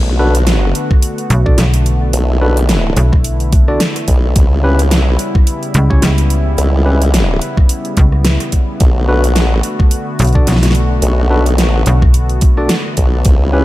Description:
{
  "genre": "glitch hop",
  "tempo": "108 BPM",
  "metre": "4/4",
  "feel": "swing 57% on 16ths",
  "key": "B minor",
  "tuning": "A4 = 440 Hz",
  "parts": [
    { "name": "warm analog pad", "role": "sustained chords", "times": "0.0-13.6 s", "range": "C#3 to F#4", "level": "-20 LUFS", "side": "left 1 dB", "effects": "chorus, sidechain pumping" },
    { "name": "formant-sweep wobble bass", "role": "bass", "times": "0.0-13.6 s", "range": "B1 to C#2", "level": "-12 LUFS", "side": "equal", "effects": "chorus" },
    { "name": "barky tine electric piano", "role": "stabs", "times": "0.2-13.6 s", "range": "C#4 to D5", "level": "-21 LUFS", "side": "equal", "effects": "vintage 12-bit sampler grit, sidechain pumping, analog delay" },
    { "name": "dubstep drum kit", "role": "drums", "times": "0.3-13.4 s", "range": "hi-hat, rim click, snare drum", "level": "-19 LUFS", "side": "equal", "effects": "overdrive" },
    { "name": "electronic kick drum", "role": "drums", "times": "0.9-13.4 s", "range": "none", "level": "-10 LUFS", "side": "equal", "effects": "overdrive" },
    { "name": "slap-like FM bass", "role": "bass", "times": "1.3-12.7 s", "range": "B1 to C#2", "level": "-12 LUFS", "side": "equal", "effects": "none" }
  ],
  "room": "little or no reverb",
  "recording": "echo-heavy mix",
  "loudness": "-10 LUFS",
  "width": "side -16 dB against mid",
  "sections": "0.0-13.6 A section",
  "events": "none",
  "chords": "0.0 Bm7; 4.4 C#m7b5; 8.8 Bm7"
}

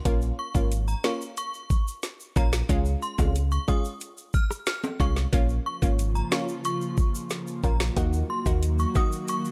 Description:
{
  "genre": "dancehall",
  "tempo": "91 BPM",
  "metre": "4/4",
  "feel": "straight",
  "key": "Bb minor",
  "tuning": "A4 = 440 Hz",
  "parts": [
    { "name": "analog pluck", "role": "accompaniment", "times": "0.1-9.1 s", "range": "Ab3 to Gb4", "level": "-34 LUFS", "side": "equal", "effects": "chorus" },
    { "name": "sub bass with octave", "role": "bass", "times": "0.1-8.9 s", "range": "Ab1 to Eb2", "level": "-28 LUFS", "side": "equal", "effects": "none" },
    { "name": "island pop drum kit", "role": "drums", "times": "0.1-9.4 s", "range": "finger snaps, hi-hat, kick drum, rim click, snare drum", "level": "-27 LUFS", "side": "equal", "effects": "none" },
    { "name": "tube shaker and timbales", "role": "percussion", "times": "0.1-9.5 s", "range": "none", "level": "-40 LUFS", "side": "equal", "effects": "none" },
    { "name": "synth chime", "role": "melody", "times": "0.4-9.5 s", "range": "Bb5 to F6", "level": "-36 LUFS", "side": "equal", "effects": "ensemble chorus, phaser, tremolo" },
    { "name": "airy breathy pad", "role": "sustained chords", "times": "5.7-9.5 s", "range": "Db3 to Gb4", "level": "-35 LUFS", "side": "equal", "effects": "chorus, sidechain pumping" }
  ],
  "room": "little or no reverb",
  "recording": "dark, warm production",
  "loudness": "-26 LUFS",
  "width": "mono",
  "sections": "0.0-9.5 A section",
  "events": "none",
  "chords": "0.1 Bbm; 2.7 Db; 5.3 Bbm; 8.0 Ebm"
}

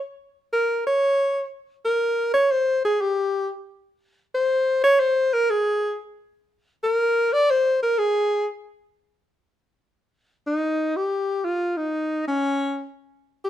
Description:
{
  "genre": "jazz",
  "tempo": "121 BPM",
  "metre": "4/4",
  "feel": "swing 68% on 8ths",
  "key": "Eb mixolydian",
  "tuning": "A4 = 440 Hz",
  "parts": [
    { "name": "clear alto saxophone", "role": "solo", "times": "0.5-13.5 s", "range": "Db4 to D5", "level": "-20 LUFS", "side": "equal", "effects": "none" }
  ],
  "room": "light reverb",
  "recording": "none",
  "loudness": "-20 LUFS",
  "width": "side -11 dB against mid",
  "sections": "0.0-10.4 A section; 10.4-13.5 A section",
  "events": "none",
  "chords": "none"
}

